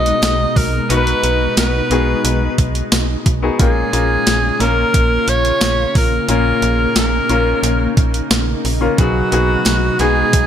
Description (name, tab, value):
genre	1980s-style pop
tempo	89 BPM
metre	4/4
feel	straight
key	Bb phrygian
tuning	A4 = 440 Hz
part	bright alto saxophone	melody	0.0-10.5 s	F#4 to D#5	-18 LUFS	equal	ping-pong delay
part	twelve-string electric guitar	second line	0.0-10.5 s	F#3 to D#4	-26 LUFS	right 2 dB	ping-pong delay
part	bright concert grand piano	accompaniment	0.0-10.5 s	Bb2 to Bb5	-21 LUFS	left 5 dB	none
part	shimmering ambient pad	sustained chords	0.0-10.5 s	B2 to F4	-23 LUFS	equal	chorus, built-in reverb
part	slap-like FM bass	bass	0.0-10.5 s	Bb1 to B1	-19 LUFS	right 1 dB	none
part	clean 12-bit digital drum machine	drums	0.1-10.5 s	hi-hat, kick drum, snare drum, tambourine	-17 LUFS	equal	overdrive
part	group handclap	percussion	0.2-10.2 s	none	-33 LUFS	right 4 dB	none
room	light reverb, digital ambience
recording	none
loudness	-13 LUFS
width	side -9 dB against mid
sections	0.0-10.5 A section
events	none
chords	0.0 B6; 3.6 Bbm; 9.0 B6